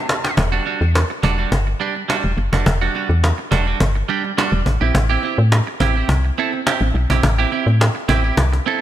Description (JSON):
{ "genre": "early-eighties boogie funk", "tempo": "105 BPM", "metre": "4/4", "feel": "straight", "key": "unclear", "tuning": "A4 = 440 Hz", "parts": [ { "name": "cajon", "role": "drums", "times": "0.1-8.7 s", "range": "none", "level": "-22 LUFS", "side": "equal", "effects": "none" }, { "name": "clean electric guitar", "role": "riff", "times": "0.4-8.8 s", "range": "G3 to A4", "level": "-21 LUFS", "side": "right 7 dB", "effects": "wide subtle chorus" }, { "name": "woody FM bass", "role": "bass", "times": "0.4-8.6 s", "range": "E1 to A2", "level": "-17 LUFS", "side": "equal", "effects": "none" } ], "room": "light reverb", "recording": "bright 1980s-style digital production", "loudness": "-15 LUFS", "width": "side -12 dB against mid", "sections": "0.4-8.8 A section", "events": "drum fill 0.0-0.4, 8.4-8.8; band accent 0.0-0.4", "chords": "0.4 Em9; 4.7 Am7", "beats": "| 0.37 0.94 1.52 2.09 | 2.66 3.23 3.80 4.37 | 4.95 5.52 6.09 6.66 | 7.23 7.80 8.37" }